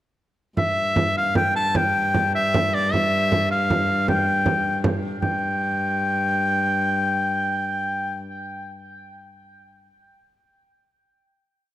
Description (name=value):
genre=medieval dance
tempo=101-112 BPM (dotted quarters)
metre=6/8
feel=straight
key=unclear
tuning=A4 = 440 Hz
part: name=bright shawm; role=melody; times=0.6-8.2 s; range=D5 to A5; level=-22 LUFS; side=left 1 dB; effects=tape echo
part: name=rich viola da gamba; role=drone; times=0.6-8.2 s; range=G2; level=-28 LUFS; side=left 1 dB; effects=none
part: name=frame drum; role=percussion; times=0.6-5.4 s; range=none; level=-24 LUFS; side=right 2 dB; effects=none
room=moderate recital hall reverb, RT60 1.7 s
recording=none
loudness=-19 LUFS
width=side -14 dB against mid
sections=0.6-5.2 A section; 5.2-7.4 final note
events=speeding up 0.6-7.4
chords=none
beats=| 0.57 1.16 | 1.75 2.34 | 2.93 3.51 | 4.08 4.65 | 5.22 5.78 | 6.33 6.87